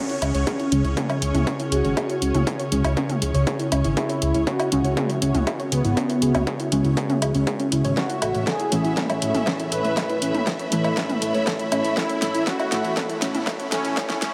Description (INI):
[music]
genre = melodic techno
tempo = 120 BPM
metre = 4/4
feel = straight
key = C# minor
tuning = A4 = 440 Hz
[part]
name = soft supersaw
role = melody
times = 0.0-14.3 s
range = B3 to B4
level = -31 LUFS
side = equal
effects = phaser, sidechain pumping, low-pass filter, tape echo
[part]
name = sweeping resonant pad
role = sustained chords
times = 0.0-14.3 s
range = C#3 to E5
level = -31 LUFS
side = equal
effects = chorus, sidechain pumping
[part]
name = soft round pluck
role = arpeggios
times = 0.0-14.3 s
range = C#4 to C#5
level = -31 LUFS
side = equal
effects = chorus, sidechain pumping, diffuse ambient delay
[part]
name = dark studio string section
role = texture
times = 0.0-14.3 s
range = A3 to B5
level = -34 LUFS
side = equal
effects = sidechain pumping
[part]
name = deep house drum kit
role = drums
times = 0.1-14.3 s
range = hi-hat, snare drum, toms, woodblock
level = -30 LUFS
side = equal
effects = overdrive
[part]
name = fat analog bass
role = bass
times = 0.2-14.3 s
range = G#1 to A2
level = -29 LUFS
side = equal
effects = sidechain pumping
[part]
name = electronic kick drum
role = drums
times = 0.5-14.1 s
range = none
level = -31 LUFS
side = equal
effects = distortion, high-pass filter on kick
[part]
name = synth brass stab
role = stabs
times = 0.7-14.3 s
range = A2 to C#4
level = -32 LUFS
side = equal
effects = chorus, sidechain pumping, diffuse ambient delay
[sound]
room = wet huge ambient reverb, RT60 7.1 s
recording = dreamy mix soaked in reverb, high-pass filter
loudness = -23 LUFS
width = mono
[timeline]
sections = 0.0-14.3 A section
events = build-up 0.0-14.3; filter sweep on synth arpeggio sound 0.0-14.3; filter sweep on supersaw synth 0.0-14.3; filter sweep on synth stab 0.0-14.3; filter sweep on analog synth pad 0.0-14.3; drum fill 8.0-14.3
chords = 0.0 C#m; 8.0 A